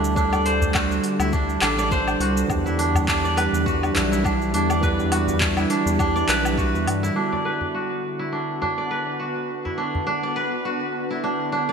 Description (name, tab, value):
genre	organic downtempo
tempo	103 BPM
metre	4/4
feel	swing 56% on 16ths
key	unclear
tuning	A4 = 438 Hz
part	overdriven tine electric piano	accompaniment	0.0-11.7 s	D3 to A4	-28 LUFS	right 2 dB	sidechain pumping, digital delay
part	bowed-like drone	sustained chords	0.0-11.7 s	D3 to F#4	-28 LUFS	equal	built-in reverb, sidechain pumping
part	kora	arpeggios	0.0-11.7 s	D4 to D5	-24 LUFS	right 1 dB	low-pass filter, digital delay
part	round analog bass	bass	0.0-7.1 s	A1 to G2	-26 LUFS	left 1 dB	none
part	deep house drum kit	drums	0.0-7.1 s	cabasa, handclaps, hi-hat, woodblock	-27 LUFS	left 2 dB	low-pass filter on perc, low-pass filter on hats, low-pass filter on snare, gated reverb
part	electronic kick drum	drums	0.2-6.7 s	none	-26 LUFS	left 1 dB	none
part	udu	percussion	0.3-10.0 s	none	-29 LUFS	equal	none
room	wet lush hall reverb, RT60 2.7 s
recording	bright 1980s-style digital production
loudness	-20 LUFS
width	side -6 dB against mid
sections	0.0-7.2 A section; 7.2-11.7 B section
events	none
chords	0.0 Dsus4; 2.5 Em7; 7.2 Bm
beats	| 0.17 0.75 1.33 1.91 | 2.50 3.08 3.66 4.24 | 4.83 5.41 5.99 6.57 | 7.16 7.74 8.32 8.90 | 9.49 10.07 10.65 11.23